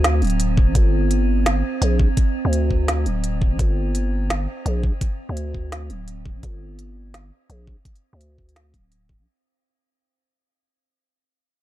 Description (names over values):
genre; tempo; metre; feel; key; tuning
half-time drum and bass; 169 BPM; 4/4; swing 58% on 16ths, half-time; G minor; A4 = 440 Hz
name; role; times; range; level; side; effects
growling 808-style bass; bass; 0.0-9.3 s; D1 to D2; -21 LUFS; equal; none
organic electronic drum kit; drums; 0.0-9.0 s; hi-hat, snare drum; -26 LUFS; right 1 dB; none
metallic inharmonic drone; texture; 0.0-9.3 s; C4; -29 LUFS; right 6 dB; chorus, built-in reverb
electronic kick drum; drums; 0.6-9.2 s; none; -19 LUFS; equal; none
room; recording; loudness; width
digital ambience; dark, warm production; -18 LUFS; side -14 dB against mid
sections
0.0-9.3 A section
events
fade-out 0.0-9.3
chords
0.0 G5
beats
0.04 0.40 | 0.75 1.11 1.46 1.82 | 2.17 2.53 2.88 3.24 | 3.59 3.95 4.30 4.66 | 5.01 5.37 5.72 6.08 | 6.43 6.79 7.14 7.50 | 7.85 8.21 8.56 8.92